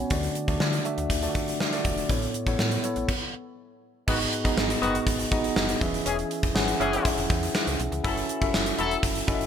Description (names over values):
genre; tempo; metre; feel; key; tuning
1980s-style pop; 121 BPM; 4/4; straight; unclear; A4 = 443 Hz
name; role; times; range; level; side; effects
tine electric piano; accompaniment; 0.0-9.5 s; G#2 to F#5; -28 LUFS; equal; slow stereo tremolo
slap-like FM bass; bass; 0.0-9.5 s; E1 to D3; -32 LUFS; equal; none
gated 80s drum kit; drums; 0.1-9.5 s; crash cymbal, hi-hat, kick drum, snare drum, tambourine; -27 LUFS; equal; gated reverb
clear horn section; stabs; 4.1-8.9 s; D#3 to A4; -31 LUFS; left 4 dB; none
room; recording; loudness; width
wet plate reverb, RT60 2.1 s; bright 1980s-style digital production; -23 LUFS; side -8 dB against mid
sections
0.0-4.1 A section; 4.1-9.5 B section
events
stop 3.1-4.1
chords
0.1 D; 2.1 Aadd9; 4.1 G#m7; 5.8 E6; 8.0 F#m7